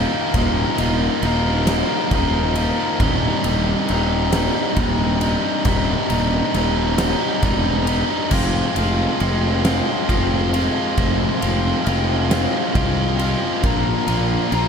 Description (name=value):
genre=post-rock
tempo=45 BPM (dotted quarters)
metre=6/8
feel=straight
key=C minor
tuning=A4 = 441 Hz
part: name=biting overdriven guitar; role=riff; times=0.0-14.7 s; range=C2 to Bb4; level=-20 LUFS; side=left 1 dB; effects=none
part: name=fuzz fingered electric bass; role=bass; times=0.0-14.7 s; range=Eb1 to C2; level=-21 LUFS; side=equal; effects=overdrive
part: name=huge arena drum kit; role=drums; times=0.3-14.7 s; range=crash cymbal, kick drum, ride cymbal, snare drum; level=-24 LUFS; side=equal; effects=none
room=small room ambience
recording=none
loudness=-17 LUFS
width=side -6 dB against mid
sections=0.0-14.7 A section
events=none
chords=0.0 Ebsus2; 3.0 Cm/Eb; 8.3 Fm; 13.6 Bb